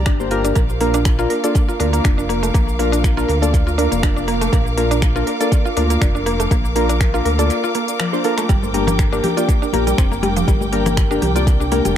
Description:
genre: afro house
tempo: 121 BPM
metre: 4/4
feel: swing 55% on 16ths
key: unclear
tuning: A4 = 439 Hz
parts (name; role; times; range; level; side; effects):
- clear studio string section; sustained chords; 0.0-12.0 s; G4 to D6; -25 LUFS; right 2 dB; sidechain pumping
- round analog bass; bass; 0.0-12.0 s; F1 to D2; -21 LUFS; equal; sidechain pumping
- mallet-like synth pluck; arpeggios; 0.1-12.0 s; F3 to Bb4; -23 LUFS; right 1 dB; chorus, sidechain pumping, dub echo
- deep house drum kit; drums; 0.1-11.9 s; cabasa, finger snaps, hi-hat; -28 LUFS; equal; tape echo
- electronic kick drum; drums; 0.1-11.6 s; none; -16 LUFS; equal; none
- warm analog keys; stabs; 0.2-12.0 s; Bb3 to D5; -21 LUFS; left 2 dB; chorus, sidechain pumping, tape echo
- congas; percussion; 8.5-11.9 s; none; -25 LUFS; left 3 dB; none
room: light reverb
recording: echo-heavy mix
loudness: -15 LUFS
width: side -10 dB against mid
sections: 0.0-12.0 A section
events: break 7.5-8.5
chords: 0.0 Gm; 0.6 Bb; 8.5 Gm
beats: 0.06 | 0.56 1.05 1.55 2.05 | 2.54 3.04 3.53 4.03 | 4.53 5.02 5.52 6.01 | 6.51 7.00 7.50 8.00 | 8.49 8.99 9.48 9.98 | 10.48 10.97 11.47 11.96

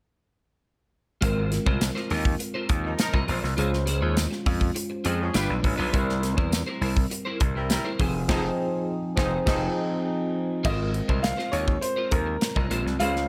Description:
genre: polished 1980s jazz-funk pop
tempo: 102 BPM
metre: 4/4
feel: straight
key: Ab major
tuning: A4 = 441 Hz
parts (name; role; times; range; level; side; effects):
- tine electric piano; accompaniment; 1.2-13.3 s; F3 to C5; -32 LUFS; equal; lush chorus
- electric guitar at the edge of break-up; riff; 1.2-13.2 s; D4 to Eb5; -36 LUFS; equal; ensemble chorus
- gritty slap bass; bass; 1.2-13.3 s; F1 to F2; -29 LUFS; equal; overdrive
- modern studio drum kit; drums; 1.2-13.2 s; crash cymbal, hi-hat, kick drum, snare drum; -30 LUFS; equal; none
- tambourine; percussion; 1.8-7.8 s; none; -41 LUFS; equal; none
- mellow horn section; second line; 2.8-9.6 s; F3 to B4; -36 LUFS; equal; none
- clear baby grand piano; melody; 10.7-13.3 s; Bb4 to F5; -31 LUFS; equal; none
room: light reverb, small room ambience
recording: none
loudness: -26 LUFS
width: mono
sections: 1.2-10.6 A section; 10.6-13.3 B section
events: band accent 8.3-10.6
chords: 1.2 Ab69; 3.6 Dbmaj7; 5.3 G7; 5.9 C7; 8.0 Fm7; 10.6 Ab69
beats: | 1.23 1.81 2.40 2.99 | 3.58 4.17 4.76 5.35 | 5.93 6.52 7.11 7.70 | 8.29 8.88 9.47 10.06 | 10.65 11.24 11.83 12.42 | 13.01

